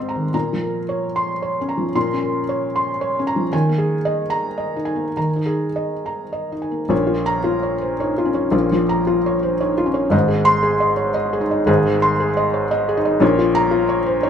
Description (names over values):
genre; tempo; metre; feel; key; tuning
neoclassical minimalist piano; 99-118 BPM; 3/4; rubato; unclear; A4 = 439 Hz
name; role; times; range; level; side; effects
felt-muted upright piano; solo; 0.0-14.3 s; Ab1 to C6; -17 LUFS; equal; none
room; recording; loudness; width
moderate studio reverb, RT60 0.8 s; band playing live in one room; -17 LUFS; side -8 dB against mid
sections
0.0-6.9 A section; 6.9-14.3 B section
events
none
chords
0.3 Bbmadd9; 3.5 Ebsus4; 6.9 Bbm; 10.1 Ab; 13.2 Bbm